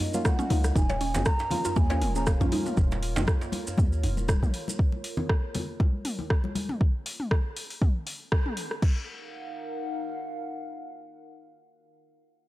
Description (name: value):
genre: afro house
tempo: 119 BPM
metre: 4/4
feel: swing 55% on 16ths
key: Eb minor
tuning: A4 = 439 Hz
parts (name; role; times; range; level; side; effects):
- dark analog pad; sustained chords; 0.0-11.9 s; Bb3 to Gb5; -38 LUFS; equal; chorus, phaser, sidechain pumping
- deep house drum kit; drums; 0.0-8.9 s; crash cymbal, hi-hat, rim click, toms; -33 LUFS; equal; overdrive
- djembe; percussion; 0.0-4.1 s; none; -34 LUFS; right 2 dB; none
- deep mellow chord stab; stabs; 0.1-2.7 s; F3 to Ab4; -34 LUFS; right 1 dB; chorus, sidechain pumping, analog delay
- congas; percussion; 0.1-6.8 s; none; -34 LUFS; left 2 dB; none
- maracas; percussion; 0.1-4.8 s; none; -41 LUFS; right 2 dB; none
- mallet-like synth pluck; arpeggios; 0.2-2.6 s; Bb3 to Db5; -34 LUFS; right 1 dB; chorus, sidechain pumping, analog delay
- breathy mellow bass bansuri; melody; 0.3-2.7 s; F5 to Bb5; -34 LUFS; right 1 dB; analog delay
- electronic kick drum; drums; 0.3-8.9 s; none; -24 LUFS; equal; none
- warm 808-style bass; bass; 0.5-4.5 s; Eb1 to Eb2; -27 LUFS; equal; sidechain pumping
room: small room ambience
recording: dry, gritty hardware recording, transformer saturation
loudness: -25 LUFS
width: side -16 dB against mid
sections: 0.0-8.8 A section; 8.8-12.5 B section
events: drop 0.0-8.8; band accent 8.3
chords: 0.0 Ebm9; 0.8 Bbm/Eb; 8.8 Ebmadd9